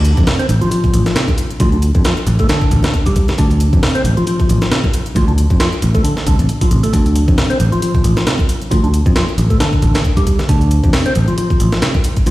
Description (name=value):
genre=breakbeat, breaks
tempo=135 BPM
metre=4/4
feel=swing 56% on 16ths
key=D minor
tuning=A4 = 440 Hz
part: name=percussive tonewheel organ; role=riff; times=0.0-12.3 s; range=C3 to C4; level=-18 LUFS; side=equal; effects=slow rotary speaker, vintage 12-bit sampler grit, low-pass filter, dub echo
part: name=picked electric bass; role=bass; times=0.0-12.3 s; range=A1 to F2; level=-14 LUFS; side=equal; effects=none
part: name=electronic hi-hat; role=drums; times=0.0-12.3 s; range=none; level=-33 LUFS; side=equal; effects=small room ambience
part: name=breakbeat sampler-style drum kit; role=drums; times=0.1-12.3 s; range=hi-hat, kick drum, snare drum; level=-15 LUFS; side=equal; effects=small room ambience
part: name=congas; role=percussion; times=0.2-12.3 s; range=none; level=-24 LUFS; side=right 1 dB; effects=none
room=light reverb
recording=played on a big sound system in a bare room, stone room reverb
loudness=-12 LUFS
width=side -17 dB against mid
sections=0.0-12.3 A section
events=none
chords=0.0 Dm